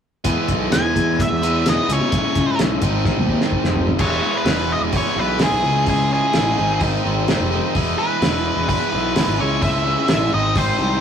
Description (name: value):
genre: indie rock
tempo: 128 BPM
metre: 4/4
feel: straight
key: E major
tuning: A4 = 440 Hz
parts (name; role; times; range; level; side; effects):
- biting overdriven guitar; riff; 0.2-11.0 s; G#2 to E4; -20 LUFS; equal; none
- fuzz picked electric bass; bass; 0.2-11.0 s; E1 to B2; -23 LUFS; equal; overdrive
- cloth-damped thuddy drum kit; drums; 0.2-10.7 s; crash cymbal, hi-hat, kick drum, snare drum, toms; -22 LUFS; equal; none
- octave-fuzz lead guitar; melody; 0.7-11.0 s; G#4 to G#5; -22 LUFS; equal; distortion
room: wet booth ambience, RT60 0.2 s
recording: rough rehearsal-room recording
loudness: -16 LUFS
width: side -8 dB against mid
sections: 0.3-4.0 A section; 4.0-11.0 B section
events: drum fill 3.1-4.0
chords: 0.3 E; 1.9 C#m; 2.8 G#; 4.0 E; 5.6 C#m; 6.6 G#; 7.8 E; 9.4 C#m; 10.3 G#